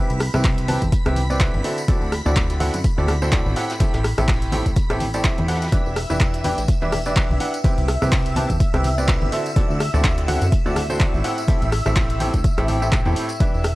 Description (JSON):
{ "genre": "piano house", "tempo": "125 BPM", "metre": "4/4", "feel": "swing 57% on 16ths", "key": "unclear", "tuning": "A4 = 439 Hz", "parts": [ { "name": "string machine, violins", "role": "sustained chords", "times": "0.0-13.8 s", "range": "E5 to B6", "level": "-31 LUFS", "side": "equal", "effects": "ensemble chorus, sidechain pumping" }, { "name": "bright upright piano", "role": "riff", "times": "0.0-13.6 s", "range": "A2 to A5", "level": "-24 LUFS", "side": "right 1 dB", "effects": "sidechain pumping" }, { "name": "plucky analog bass", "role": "bass", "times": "0.1-13.7 s", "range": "E1 to F#2", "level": "-23 LUFS", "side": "equal", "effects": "sidechain pumping" }, { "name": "punchy analog drum machine", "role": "drums", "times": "0.1-13.8 s", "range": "handclaps, hi-hat, rim click", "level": "-27 LUFS", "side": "equal", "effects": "overdrive" }, { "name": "vintage brush drum kit", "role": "drums", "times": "0.1-13.8 s", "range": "hi-hat, snare drum", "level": "-39 LUFS", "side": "equal", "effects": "none" }, { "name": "tambourine and congas", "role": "percussion", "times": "0.1-13.6 s", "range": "none", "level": "-32 LUFS", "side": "left 2 dB", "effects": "none" }, { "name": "electronic kick drum", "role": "drums", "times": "0.4-13.5 s", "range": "none", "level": "-19 LUFS", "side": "equal", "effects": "overdrive" } ], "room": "small room ambience", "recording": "dry, gritty hardware recording, cassette tape", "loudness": "-17 LUFS", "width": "side -19 dB against mid", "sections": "0.0-13.8 A section", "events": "none", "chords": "0.0 Cmaj7; 1.6 D9; 3.6 Am7; 5.7 Em7; 7.6 Cmaj7; 9.3 D9; 11.2 Am7", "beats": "0.44 0.92 1.40 | 1.88 2.36 2.84 3.32 | 3.80 4.28 4.76 5.24 | 5.72 6.20 6.68 7.16 | 7.64 8.12 8.60 9.08 | 9.56 10.04 10.52 11.00 | 11.48 11.96 12.44 12.92 | 13.40" }